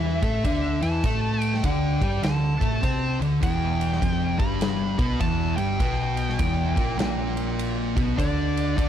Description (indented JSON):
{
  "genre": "stoner and doom metal",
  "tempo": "101 BPM",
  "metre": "4/4",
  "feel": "swing 63% on 8ths",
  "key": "E minor",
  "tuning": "A4 = 438 Hz",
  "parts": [
    { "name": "fuzz lead guitar", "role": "melody", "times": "0.0-8.9 s", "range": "D5 to B5", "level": "-31 LUFS", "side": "equal", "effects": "distortion, ping-pong delay" },
    { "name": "thick fuzz guitar", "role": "riff", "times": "0.0-8.9 s", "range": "E2 to C5", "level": "-28 LUFS", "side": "left 10 dB", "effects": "distortion" },
    { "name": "thick fuzz guitar", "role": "riff", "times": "0.0-8.9 s", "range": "E2 to C5", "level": "-28 LUFS", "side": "right 8 dB", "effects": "distortion" },
    { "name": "hollow-body short-scale picked electric bass", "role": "bass", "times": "0.0-8.9 s", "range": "E1 to C3", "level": "-28 LUFS", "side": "equal", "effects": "overdrive" },
    { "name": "big rock drum kit", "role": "drums", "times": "0.2-8.9 s", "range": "kick drum, ride cymbal, snare drum", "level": "-28 LUFS", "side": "equal", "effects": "none" }
  ],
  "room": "little or no reverb",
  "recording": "dark, warm production",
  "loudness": "-22 LUFS",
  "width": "side -10 dB against mid",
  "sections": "0.0-8.9 A section",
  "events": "none",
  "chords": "0.0 D5; 3.4 Em; 8.2 D5"
}